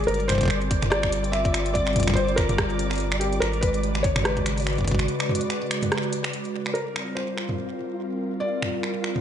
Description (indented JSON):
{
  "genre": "IDM",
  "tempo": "144 BPM",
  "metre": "4/4",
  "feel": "swing 56% on 16ths",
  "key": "unclear",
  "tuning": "A4 = 440 Hz",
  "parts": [
    { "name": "felt-muted upright piano", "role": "melody", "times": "0.0-9.2 s", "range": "G4 to E5", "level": "-28 LUFS", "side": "left 1 dB", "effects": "ping-pong delay, shimmer reverb" },
    { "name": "hollow soft pad", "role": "sustained chords", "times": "0.0-9.2 s", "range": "C#3 to Cb5", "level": "-29 LUFS", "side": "equal", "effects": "chorus, shimmer reverb" },
    { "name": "warm sub bass", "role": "bass", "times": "0.0-5.1 s", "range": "G1 to Ab1", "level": "-28 LUFS", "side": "equal", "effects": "none" },
    { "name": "glitchy drum kit", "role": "drums", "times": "0.0-9.2 s", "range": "finger snaps, hi-hat, rim click, toms", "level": "-28 LUFS", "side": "right 1 dB", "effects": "none" },
    { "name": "flickering grainy texture", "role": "texture", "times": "0.0-9.2 s", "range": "F4 to D5", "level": "-34 LUFS", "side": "equal", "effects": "built-in reverb, shimmer reverb" },
    { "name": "electronic kick drum", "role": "drums", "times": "0.3-5.0 s", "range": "none", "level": "-26 LUFS", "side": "equal", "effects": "none" }
  ],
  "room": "light reverb",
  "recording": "nothing above 10.7 kHz",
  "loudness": "-22 LUFS",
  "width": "side -9 dB against mid",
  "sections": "0.0-6.8 A section; 6.8-9.2 B section",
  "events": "break 5.1-6.8",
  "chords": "0.1 Gm7; 3.4 Abm7; 6.8 Gm7"
}